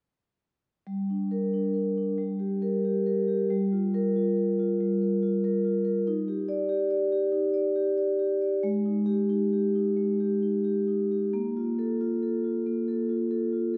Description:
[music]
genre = classical, contemporary piece for solo vibraphone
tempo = 92 BPM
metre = 4/4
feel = rubato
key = unclear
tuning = A4 = 441 Hz
[part]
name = vibraphone with soft mallets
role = solo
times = 0.9-13.8 s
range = G3 to D5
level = -27 LUFS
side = equal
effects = none
[sound]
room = wet recital hall reverb, RT60 1.7 s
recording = recorded in a church or concert hall, nothing above 10.6 kHz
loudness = -27 LUFS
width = mono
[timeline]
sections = 0.9-13.8 A section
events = none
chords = 0.9 Gm; 3.5 Fsus24/G; 6.1 Ebmaj7; 8.6 Ab5; 11.3 Bb5

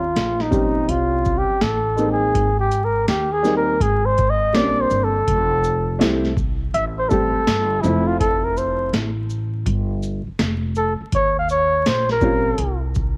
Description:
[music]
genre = hip hop, jazz-hop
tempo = 82 BPM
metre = 4/4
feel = swing 66% on 16ths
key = F major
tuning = A4 = 437 Hz
[part]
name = mellow flugelhorn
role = melody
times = 0.0-12.8 s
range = Eb4 to F5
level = -22 LUFS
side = equal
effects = cassette tape
[part]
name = upright bass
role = bass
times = 0.0-13.2 s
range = F1 to Eb2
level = -27 LUFS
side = equal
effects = none
[part]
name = booming analog drum machine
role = drums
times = 0.2-13.2 s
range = hi-hat, kick drum, shaker, snare drum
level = -26 LUFS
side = equal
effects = overdrive, cassette tape
[part]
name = dark upright piano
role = accompaniment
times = 0.5-12.5 s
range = F3 to G4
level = -25 LUFS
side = equal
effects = cassette tape
[sound]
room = light reverb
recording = home recording on cassette, vinyl crackle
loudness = -20 LUFS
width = mono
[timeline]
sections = 0.0-13.2 A section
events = flugelhorn solo 0.0-13.2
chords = 0.0 Eb13; 1.6 Ammaj7; 2.3 Abmaj9; 5.3 Fmaj9; 11.1 Eb13

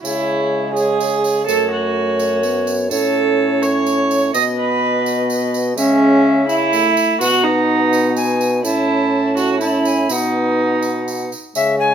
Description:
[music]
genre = classical, renaissance-style consort dance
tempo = 126 BPM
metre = 3/4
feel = straight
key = unclear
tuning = A4 = 440 Hz
[part]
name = rich viola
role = second line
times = 0.0-11.3 s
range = C#4 to D#5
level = -17 LUFS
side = right 3 dB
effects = none
[part]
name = mellow trombone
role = accompaniment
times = 0.0-11.9 s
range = G#3 to C#4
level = -22 LUFS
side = equal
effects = none
[part]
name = warm bassoon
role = bass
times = 0.0-11.9 s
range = F#2 to C#3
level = -22 LUFS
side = right 1 dB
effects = none
[part]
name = tambourine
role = percussion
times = 0.0-11.8 s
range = none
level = -29 LUFS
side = right 5 dB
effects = none
[part]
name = alto recorder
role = melody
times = 0.1-11.9 s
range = C#5 to A5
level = -22 LUFS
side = left 4 dB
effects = none
[sound]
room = light reverb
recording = close, detailed microphones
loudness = -14 LUFS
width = side -8 dB against mid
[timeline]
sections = 0.0-11.6 A section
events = none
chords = 0.0 C#m; 1.5 F#m; 2.9 A; 4.3 B; 5.8 C#m; 7.2 B; 8.6 A; 10.1 B

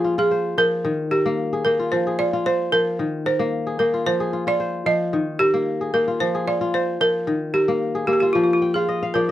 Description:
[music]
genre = west african traditional, West African string and xylophone music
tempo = 112 BPM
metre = 4/4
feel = straight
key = unclear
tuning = A4 = 437 Hz
[part]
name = balafon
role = melody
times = 0.0-9.3 s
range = F4 to Eb5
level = -20 LUFS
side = right 2 dB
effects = none
[part]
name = kora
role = arpeggios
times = 0.0-9.3 s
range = Eb3 to G5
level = -23 LUFS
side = left 4 dB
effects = none
[sound]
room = light reverb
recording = dry, close 1970s-style studio recording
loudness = -19 LUFS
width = side -13 dB against mid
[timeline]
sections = 0.0-9.3 A section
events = kora fill 8.6-9.3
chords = 0.0 Fm; 0.8 Eb; 1.9 Fm; 3.0 Eb5; 4.1 Fm; 5.1 Eb; 6.2 Fm; 7.3 Eb; 8.3 N.C.

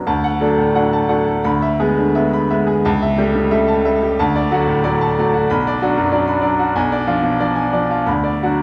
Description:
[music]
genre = classical, romantic character piece for solo piano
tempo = 81-95 BPM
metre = 2/4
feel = rubato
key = D major, B minor from 5.5 s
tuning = A4 = 440 Hz
[part]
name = bright grand piano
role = solo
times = 0.0-8.6 s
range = B1 to B5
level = -17 LUFS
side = equal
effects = none
[sound]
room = wet recital hall reverb, RT60 1.4 s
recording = recorded in a church or concert hall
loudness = -17 LUFS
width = mono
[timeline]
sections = 0.1-8.6 A section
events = none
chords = 0.1 D; 1.5 E7/D; 2.8 A7/C#; 4.2 D; 5.5 Bm; 6.7 Bdim7; 8.1 Bm/D

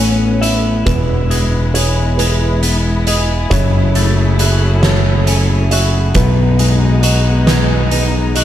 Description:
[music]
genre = post-rock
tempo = 45 BPM (dotted quarters)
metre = 6/8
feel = straight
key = unclear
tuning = A4 = 440 Hz
[part]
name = clear studio string section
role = sustained chords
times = 0.0-8.4 s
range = F#3 to A4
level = -22 LUFS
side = equal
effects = none
[part]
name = felt-muted upright piano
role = arpeggios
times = 0.0-8.4 s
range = B4 to E5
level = -23 LUFS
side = right 7 dB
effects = tape echo
[part]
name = twelve-string electric guitar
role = arpeggios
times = 0.0-8.4 s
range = E2 to G#4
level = -20 LUFS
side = left 5 dB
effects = phaser, tape echo
[part]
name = growling fingered electric bass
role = bass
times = 0.0-8.4 s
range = E1 to B1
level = -14 LUFS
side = equal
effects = overdrive
[part]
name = oversized low-tuned drum kit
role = drums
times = 0.4-8.4 s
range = hi-hat, kick drum, snare drum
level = -18 LUFS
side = equal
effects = none
[sound]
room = small room ambience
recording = dark, warm production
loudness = -11 LUFS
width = side -11 dB against mid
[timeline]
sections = 0.0-8.4 A section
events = none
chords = 0.0 Aadd9; 0.9 E; 3.5 F#m7; 6.2 B6

